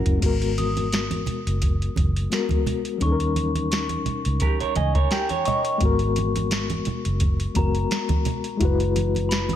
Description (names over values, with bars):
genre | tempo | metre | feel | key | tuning
lush 1970s-style soul | 86 BPM | 4/4 | swing 54% on 16ths | unclear | A4 = 438 Hz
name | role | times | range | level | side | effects
mellow reed electric piano | accompaniment | 0.0-9.6 s | F#3 to G#5 | -26 LUFS | left 6 dB | fast tremolo
electric guitar through a small old amp | riff | 0.0-0.2, 4.4-5.8 s | F#4 to D#5 | -28 LUFS | right 10 dB | none
vintage muted fingered electric bass | bass | 0.0-9.6 s | F#1 to D#2 | -25 LUFS | equal | none
soft vintage rhythm box | drums | 0.1-9.6 s | crash cymbal, hi-hat, kick drum, snare drum | -25 LUFS | equal | none
congas | percussion | 0.2-9.6 s | none | -32 LUFS | right 5 dB | none
glockenspiel with rubber mallets | texture | 0.6-9.6 s | A#5 to D#6 | -32 LUFS | left 3 dB | none
room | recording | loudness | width
digital ambience | none | -20 LUFS | side -10 dB against mid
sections
0.2-9.6 A section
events
reed electric piano fill 4.4-5.8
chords
0.2 G#m9; 3.0 D#7; 5.8 G#m9; 8.6 F#9sus4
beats
| 0.23 0.93 1.62 2.32 | 3.02 3.72 4.42 5.12 | 5.82 6.51 7.21 7.91 | 8.61 9.30